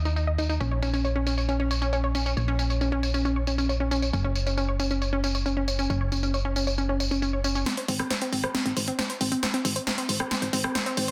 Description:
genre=uplifting trance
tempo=136 BPM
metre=4/4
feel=straight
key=unclear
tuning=A4 = 439 Hz
part: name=solid FM bass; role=bass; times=0.0-11.1 s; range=Gb1 to Eb2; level=-30 LUFS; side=equal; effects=high-pass filter
part: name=unison pluck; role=arpeggios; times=0.1-11.1 s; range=C4 to Eb5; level=-30 LUFS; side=equal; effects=vintage 12-bit sampler grit, digital delay
part: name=punchy analog drum machine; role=drums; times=0.1-11.1 s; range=hi-hat, rim click, snare drum, tambourine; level=-32 LUFS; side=equal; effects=low-pass filter on perc, low-pass filter on snare, low-pass filter on hats, low-pass filter on room
room=light reverb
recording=dense, heavily limited modern master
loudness=-26 LUFS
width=mono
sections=0.0-7.7 A section; 7.7-11.1 B section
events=build-up 7.7-11.1; drum fill 7.7-11.1; filter sweep on synth arpeggio sound 7.7-11.1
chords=0.0 N.C.; 0.6 Bbm; 4.1 Gb5; 7.7 Ab

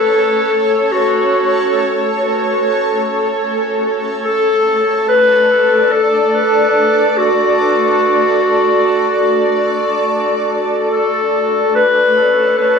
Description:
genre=ambient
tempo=free time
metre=none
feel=none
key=B minor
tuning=A4 = 440 Hz
part: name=warm clarinet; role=melody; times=0.0-12.8 s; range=F#4 to B4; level=-13 LUFS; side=left 1 dB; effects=vintage 12-bit sampler grit, dub echo
part: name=granular cloud pad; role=sustained chords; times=0.0-12.8 s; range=A4 to D5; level=-16 LUFS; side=equal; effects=built-in reverb
room=wet spring reverb, RT60 1.3 s, small room ambience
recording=echo-heavy mix, vinyl crackle, studio reverb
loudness=-11 LUFS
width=side -5 dB against mid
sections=0.0-12.8 A section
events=none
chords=0.0 Bm9 (rootless)

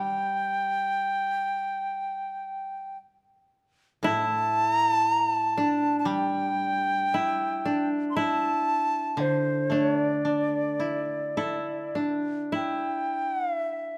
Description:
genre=japanese traditional, Japanese chamber music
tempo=52-60 BPM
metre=4/4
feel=rubato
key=unclear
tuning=A4 = 440 Hz
part: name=bright reedy baroque flute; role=melody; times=0.0-14.0 s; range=D5 to C6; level=-28 LUFS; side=equal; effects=none
part: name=koto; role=accompaniment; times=0.0-13.6 s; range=A2 to D5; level=-35 LUFS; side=equal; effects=none
part: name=koto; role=second line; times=4.0-14.0 s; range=D4 to E4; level=-32 LUFS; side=equal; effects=none
room=moderate recital hall reverb, RT60 1.6 s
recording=none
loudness=-27 LUFS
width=mono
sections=0.0-12.5 A section; 12.5-14.0 B section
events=none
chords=none

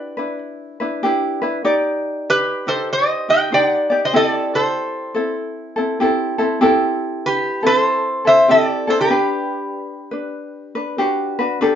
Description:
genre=Hawaiian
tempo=96 BPM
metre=4/4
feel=swing 63% on 8ths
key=G major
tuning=A4 = 440 Hz
part: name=lap resonator guitar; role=melody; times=0.0-10.9 s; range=G4 to G5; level=-16 LUFS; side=equal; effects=none
part: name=ukulele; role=accompaniment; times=0.0-11.8 s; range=C4 to D5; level=-19 LUFS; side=equal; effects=none
room=wet studio reverb, RT60 0.6 s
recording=heard from further back in the room, nothing above 7.5 kHz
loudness=-16 LUFS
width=side -9 dB against mid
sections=0.0-11.6 A section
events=none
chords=0.0 G6; 1.6 Cmadd9; 4.1 Am7; 9.1 Gmaj7

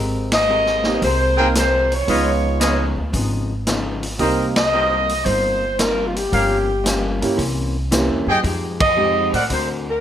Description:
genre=jazz, big band swing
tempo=113 BPM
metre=4/4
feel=swing 69% on 8ths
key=F minor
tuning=A4 = 439 Hz
part: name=hollow-body jazz guitar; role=accompaniment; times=0.0-9.9 s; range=G2 to Bb4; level=-26 LUFS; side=left 3 dB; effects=none
part: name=upright bass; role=bass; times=0.0-10.0 s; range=G1 to A2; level=-24 LUFS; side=equal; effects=none
part: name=warm saxophone section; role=melody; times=0.3-10.0 s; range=F4 to Eb5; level=-19 LUFS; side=equal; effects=none
part: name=swinging big-band drum kit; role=drums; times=0.3-9.7 s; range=hi-hat, kick drum, ride cymbal, snare drum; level=-24 LUFS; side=equal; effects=none
part: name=warm concert grand piano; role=accompaniment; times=0.9-9.3 s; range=Ab3 to Bb4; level=-23 LUFS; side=right 3 dB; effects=none
part: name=clear trumpet section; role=stabs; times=1.4-9.4 s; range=F4 to G5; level=-21 LUFS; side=equal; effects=none
room=moderate large studio reverb, RT60 1.1 s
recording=none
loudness=-16 LUFS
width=side -10 dB against mid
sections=0.0-10.0 A section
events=band accent 0.2, 4.5, 8.7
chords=0.0 Abmaj9; 2.1 Db9; 4.2 Cm7; 6.3 Gm7b5; 7.4 C7b9; 8.4 Fm9

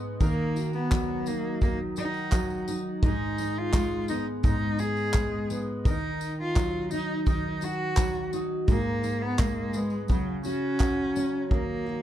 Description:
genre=acoustic pop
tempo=85 BPM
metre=4/4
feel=straight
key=Eb minor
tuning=A4 = 441 Hz
part: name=picked steel-string acoustic guitar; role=accompaniment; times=0.0-12.0 s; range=Ab2 to Bb4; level=-30 LUFS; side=equal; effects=double-tracked left and right
part: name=rich cello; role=melody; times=0.2-12.0 s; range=Gb3 to Ab4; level=-31 LUFS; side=equal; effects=none
part: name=loose indie drum kit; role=drums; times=0.2-11.7 s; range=handclaps, kick drum, tambourine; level=-27 LUFS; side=equal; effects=none
part: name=tambourine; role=percussion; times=0.2-11.3 s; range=none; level=-50 LUFS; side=right 7 dB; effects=none
room=light reverb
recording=dark, warm production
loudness=-25 LUFS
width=side -11 dB against mid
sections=0.0-11.5 A section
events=none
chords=0.2 Ebm; 3.0 Abm; 5.9 Ebm; 8.7 Abm; 10.1 Dbsus4; 11.5 Ebm

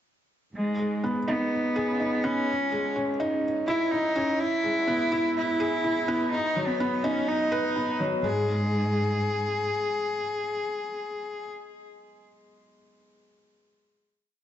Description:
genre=piano and strings electronica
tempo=125 BPM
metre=4/4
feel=straight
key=G# minor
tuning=A4 = 440 Hz
part: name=clear cello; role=melody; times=0.6-11.5 s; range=G#3 to G#4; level=-27 LUFS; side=equal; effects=low-pass filter, ping-pong delay
part: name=dark symphonic cello section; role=bass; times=0.6-9.6 s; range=C#2 to C#3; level=-34 LUFS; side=right 1 dB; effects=high-pass filter
part: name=felt-muted upright piano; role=riff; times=0.8-14.4 s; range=F#3 to B4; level=-28 LUFS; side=equal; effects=ping-pong delay
room=moderate recital hall reverb, RT60 1.4 s, small room ambience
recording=nothing above 7.8 kHz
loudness=-24 LUFS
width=side -10 dB against mid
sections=0.6-8.2 build; 8.2-12.1 final chord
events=build-up 0.6-8.2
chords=0.6 G#m; 2.5 C#madd9; 4.4 E; 6.3 B; 8.2 N.C.

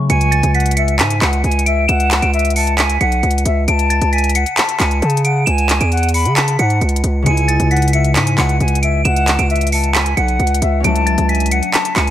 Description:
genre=hip hop, trap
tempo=134 BPM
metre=4/4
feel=half-time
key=C# phrygian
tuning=A4 = 441 Hz
part: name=soft synth bell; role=melody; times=0.0-12.1 s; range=A6 to E7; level=-20 LUFS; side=right 1 dB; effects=chorus, phaser, analog delay
part: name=concert harp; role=accompaniment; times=0.0-0.1, 7.2-12.1 s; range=C#3 to E4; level=-20 LUFS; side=left 2 dB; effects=analog delay
part: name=silver concert flute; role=second line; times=0.1-12.1 s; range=E5 to B5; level=-20 LUFS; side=left 2 dB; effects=analog delay
part: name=distorted 808-style bass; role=bass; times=0.1-12.1 s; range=B1 to C#3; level=-16 LUFS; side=equal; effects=distortion
part: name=trap drum kit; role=drums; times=0.1-12.1 s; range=handclaps, hi-hat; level=-19 LUFS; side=equal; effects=none
room=digital ambience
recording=echo-heavy mix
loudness=-12 LUFS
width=side -11 dB against mid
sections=0.1-12.1 A section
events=none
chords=0.1 C#5; 3.7 Bm13/C#; 5.5 C#madd11; 7.3 C#m; 10.8 D/C#

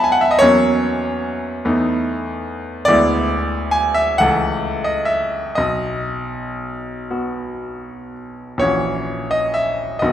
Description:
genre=classical, romantic nocturne for solo piano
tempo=38-50 BPM (dotted quarters)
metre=12/8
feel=rubato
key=unclear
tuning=A4 = 440 Hz
part: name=bright grand piano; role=solo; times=0.0-10.1 s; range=A#1 to B5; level=-17 LUFS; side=equal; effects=none
room=moderate concert hall reverb, RT60 2.2 s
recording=minimal, uncompressed stereo recording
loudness=-16 LUFS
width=side -10 dB against mid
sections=0.0-10.1 A section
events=none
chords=0.4 F#7/E; 1.7 B7/E; 2.9 E7/D; 4.2 A/C#; 5.6 B; 8.6 F#7/A#

